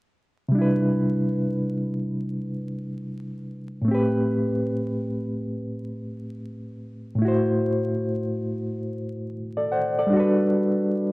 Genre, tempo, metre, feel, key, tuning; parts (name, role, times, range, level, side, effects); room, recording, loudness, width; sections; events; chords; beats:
hip hop; free time; A dorian; A4 = 444 Hz
barky reed electric piano; accompaniment; 0.5-11.1 s; A2 to F#5; -23 LUFS; equal; overdrive, fast tremolo, cassette tape
wet spring reverb, RT60 2.0 s; dark, warm production, vinyl crackle; -22 LUFS; side -22 dB against mid
0.5-11.1 A section
0.5 Cmaj9; 3.9 Am9; 7.2 Am6; 10.1 Gmaj9
free time